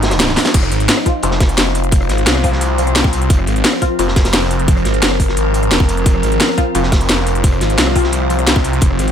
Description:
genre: dark technical drum and bass.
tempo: 174 BPM.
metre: 4/4.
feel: straight.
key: F minor.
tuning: A4 = 440 Hz.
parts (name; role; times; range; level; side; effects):
metallic inharmonic drone; sustained chords; 0.0-9.1 s; F3 to Bb4; -20 LUFS; left 1 dB; chorus, built-in reverb, sidechain pumping.
snarling distorted saw bass; bass; 0.0-9.1 s; F1 to C2; -17 LUFS; equal; distortion, overdrive.
crunchy breakbeat drum kit; drums; 0.0-9.1 s; hi-hat, snare drum; -24 LUFS; equal; high-pass filter on hats, high-pass filter on snare, high-pass filter on room.
drum and bass drum kit; drums; 0.0-9.1 s; crash cymbal, hi-hat, rim click, snare drum; -16 LUFS; equal; none.
electronic kick drum; drums; 0.5-8.9 s; none; -14 LUFS; equal; none.
filtered dub chord stab; stabs; 1.1-4.1, 6.6-9.1 s; F3 to F4; -22 LUFS; left 4 dB; phaser, wide subtle chorus, ping-pong delay.
room: little or no reverb.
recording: none.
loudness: -12 LUFS.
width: side -8 dB against mid.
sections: 0.5-9.1 A section.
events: break 0.0-0.5; drum fill 0.3; drop 0.5-9.1.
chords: 0.0 F5.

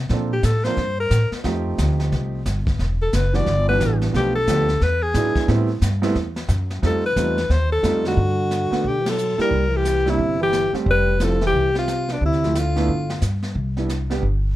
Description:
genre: jazz, small-group swing and bop.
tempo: 178 BPM.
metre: 4/4.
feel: swing 62% on 8ths.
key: unclear.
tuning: A4 = 440 Hz.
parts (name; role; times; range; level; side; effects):
upright bass; bass; 0.0-14.6 s; E1 to B2; -22 LUFS; equal; none.
warm concert grand piano; accompaniment; 0.1-14.2 s; E3 to Bb4; -25 LUFS; right 4 dB; none.
jazz brush drum kit; drums; 0.1-14.6 s; brushed snare drum, hi-hat, kick drum, ride cymbal, snare drum; -28 LUFS; equal; none.
clear alto saxophone; melody; 0.3-13.2 s; D4 to D5; -21 LUFS; left 2 dB; plate reverb.
breathy trombone; second line; 8.1-13.2 s; B2 to G3; -27 LUFS; right 4 dB; none.
room: light reverb.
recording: dark, warm production.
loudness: -18 LUFS.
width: side -15 dB against mid.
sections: 0.0-8.2 A section; 8.2-14.6 B section.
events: alto saxophone solo 0.0-8.2; band accent 9.0.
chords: 0.1 Bbmaj7; 1.4 F9; 2.8 Em7; 4.1 Bm7b5; 4.8 E7; 5.5 Am7; 6.8 F9; 8.2 Gmaj9; 9.5 C; 10.9 Fmaj9; 12.2 Dm9; 12.9 G5; 13.6 Cmaj7sus2.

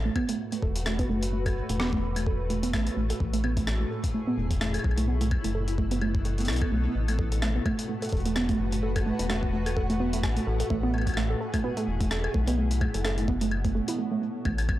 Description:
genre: IDM.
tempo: 128 BPM.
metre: 4/4.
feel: swing 56% on 16ths.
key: unclear.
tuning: A4 = 441 Hz.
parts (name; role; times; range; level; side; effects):
granular cloud pad; sustained chords; 0.0-14.0 s; A2 to B4; -34 LUFS; left 1 dB; built-in reverb.
rubbery square bass; bass; 0.0-14.8 s; E1 to B1; -28 LUFS; equal; tube saturation.
warbly dusty pluck; arpeggios; 0.1-14.7 s; A3 to A4; -30 LUFS; right 3 dB; chorus, analog delay.
electronic kick drum; drums; 0.2-14.8 s; none; -30 LUFS; equal; overdrive.
jungle sampler-style drum kit; drums; 0.2-14.8 s; hi-hat, rim click, woodblock; -35 LUFS; left 1 dB; overdrive.
flickering grainy texture; texture; 7.4-14.0 s; F#4 to F#5; -41 LUFS; equal; built-in reverb.
room: little or no reverb.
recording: dry, gritty hardware recording, transformer saturation.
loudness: -25 LUFS.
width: side -14 dB against mid.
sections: 0.0-14.5 A section.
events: break 14.0-14.5.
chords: 0.0 Asus2; 3.2 F#m7/A; 5.1 B7sus4; 7.0 Asus2; 10.7 F#m7/A; 12.6 B7sus4.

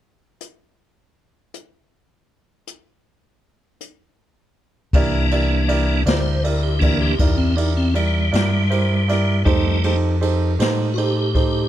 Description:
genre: slow blues.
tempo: 53 BPM (dotted quarters).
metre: 12/8.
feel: straight.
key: C mixolydian.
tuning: A4 = 440 Hz.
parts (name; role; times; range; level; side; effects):
jazz brush drum kit; drums; 0.4-11.5 s; hi-hat, kick drum, ride cymbal, snare drum; -23 LUFS; equal; none.
clear grand piano; accompaniment; 4.9-11.6 s; Eb4 to D5; -24 LUFS; right 4 dB; none.
tonewheel organ; sustained chords; 4.9-11.7 s; E3 to C5; -22 LUFS; right 1 dB; slow rotary speaker, overdrive, chorus vibrato.
fingered electric bass; bass; 4.9-11.7 s; C2 to A2; -20 LUFS; left 1 dB; none.
room: little or no reverb.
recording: dark, warm production.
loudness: -16 LUFS.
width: side -12 dB against mid.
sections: 0.4-4.9 A section; 4.9-11.7 B section.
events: tonewheel organ solo 4.9-11.7.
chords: 0.4 N.C.; 4.9 C9; 9.5 F9.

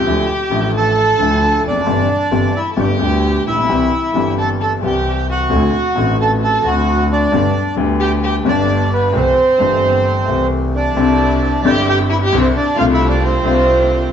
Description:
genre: tango.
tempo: 132 BPM.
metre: 4/4.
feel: rubato.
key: C major.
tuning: A4 = 435 Hz.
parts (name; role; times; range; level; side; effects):
bandoneon; melody; 0.0-14.1 s; B3 to A5; -17 LUFS; right 3 dB; none.
warm violin; second line; 0.0-14.1 s; B3 to A4; -23 LUFS; left 4 dB; none.
clear upright piano; accompaniment; 0.0-14.1 s; G1 to G4; -18 LUFS; left 3 dB; none.
clear double bass; bass; 0.0-14.1 s; F1 to D2; -19 LUFS; equal; none.
muted studio string section; stabs; 11.0-14.1 s; A3 to F4; -26 LUFS; left 1 dB; none.
room: wet stone room reverb, RT60 1.3 s.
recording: band playing live in one room, nothing above 7.9 kHz.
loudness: -13 LUFS.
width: side -8 dB against mid.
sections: 0.0-11.0 A section; 11.0-14.1 B section.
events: none.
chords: 0.1 Dmadd9; 1.9 C/G; 2.8 G; 3.7 C; 5.5 D7; 7.3 G; 9.1 C6; 11.0 Cadd9; 12.8 F6/C.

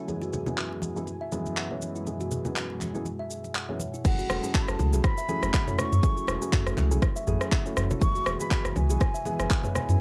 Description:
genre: afro house.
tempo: 121 BPM.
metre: 4/4.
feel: swing 56% on 16ths.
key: F# minor.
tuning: A4 = 441 Hz.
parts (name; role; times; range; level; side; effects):
ethereal airy pad; sustained chords; 0.0-10.0 s; F#2 to G#5; -44 LUFS; equal; none.
kalimba; arpeggios; 0.0-10.0 s; E4 to F#5; -39 LUFS; equal; sidechain pumping, low-pass filter, cassette tape, tape echo.
felt-muted upright piano; stabs; 0.0-10.0 s; F#2 to B4; -36 LUFS; equal; sidechain pumping, low-pass filter, cassette tape, tape echo.
house drum kit; drums; 0.1-10.0 s; crash cymbal, handclaps, rim click, shaker, toms; -34 LUFS; equal; low-pass filter on perc, cassette tape, low-pass filter on cymbals, low-pass filter on snare, low-pass filter on toms, low-pass filter on room.
congas; percussion; 0.1-10.0 s; none; -38 LUFS; equal; none.
warm sub bass; bass; 4.0-10.0 s; E1 to F#2; -28 LUFS; equal; sidechain pumping.
electronic kick drum; drums; 4.0-9.6 s; none; -27 LUFS; equal; cassette tape.
breathy concert flute; melody; 4.1-10.0 s; F#5 to C#6; -36 LUFS; equal; tape echo.
room: light reverb.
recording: home recording on cassette.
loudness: -27 LUFS.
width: mono.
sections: 0.0-4.0 A section; 4.0-10.0 B section.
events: filter sweep on ambient pad 0.0-4.0; drop 4.0-10.0.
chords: 0.1 E/F#; 4.0 F#m7; 8.0 E.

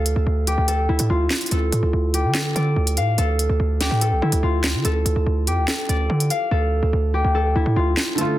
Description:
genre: hip hop, drill.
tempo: 144 BPM.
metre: 4/4.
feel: half-time.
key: D minor.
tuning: A4 = 436 Hz.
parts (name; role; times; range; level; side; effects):
concert harp; melody; 0.0-8.4 s; E4 to F5; -23 LUFS; left 1 dB; low-pass filter, plate reverb, digital delay.
hard-hitting 808-style bass; bass; 0.0-8.0 s; C2 to D3; -20 LUFS; equal; none.
drill drum kit; drums; 0.1-8.3 s; handclaps, hi-hat, snare drum; -24 LUFS; equal; none.
felt-muted upright piano; accompaniment; 8.2-8.4 s; D3 to F4; -20 LUFS; right 2 dB; low-pass filter, plate reverb.
room: light reverb.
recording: dense, heavily limited modern master.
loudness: -18 LUFS.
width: side -14 dB against mid.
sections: 0.0-8.4 A section.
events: hi-hats muted 6.5-8.2; kick muted 8.2.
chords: 0.0 Dm.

